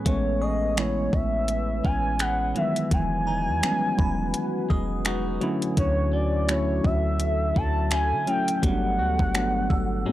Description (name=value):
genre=contemporary R&B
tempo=84 BPM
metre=4/4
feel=swing 58% on 16ths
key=unclear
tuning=A4 = 441 Hz
part: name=mellow tine electric piano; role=accompaniment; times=0.0-10.1 s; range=G#2 to E4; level=-28 LUFS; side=equal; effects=medium stereo tremolo
part: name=deep dark ambient pad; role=sustained chords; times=0.0-10.1 s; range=D3 to G#5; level=-35 LUFS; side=left 2 dB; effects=chorus, built-in reverb, sidechain pumping
part: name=clean electric guitar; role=arpeggios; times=0.0-10.1 s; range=D3 to B4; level=-33 LUFS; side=left 2 dB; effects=none
part: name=gliding portamento lead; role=melody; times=0.1-10.1 s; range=C#5 to A5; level=-27 LUFS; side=equal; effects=chorus, analog delay
part: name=warm 808-style bass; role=bass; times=0.1-10.0 s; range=E1 to D3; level=-28 LUFS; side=equal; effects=none
part: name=crisp 8-bit digital drum machine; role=drums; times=0.1-9.9 s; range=finger snaps, hi-hat, kick drum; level=-26 LUFS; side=equal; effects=overdrive
part: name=glassy synth bell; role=texture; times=0.4-10.1 s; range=A#5 to E6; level=-41 LUFS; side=right 2 dB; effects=chorus, tremolo, analog delay
room=digital ambience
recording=dry, gritty hardware recording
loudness=-22 LUFS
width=side -14 dB against mid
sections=0.1-10.1 A section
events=none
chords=0.1 Amaj9; 2.6 Emaj9; 5.4 Dmaj9; 8.6 Gmaj9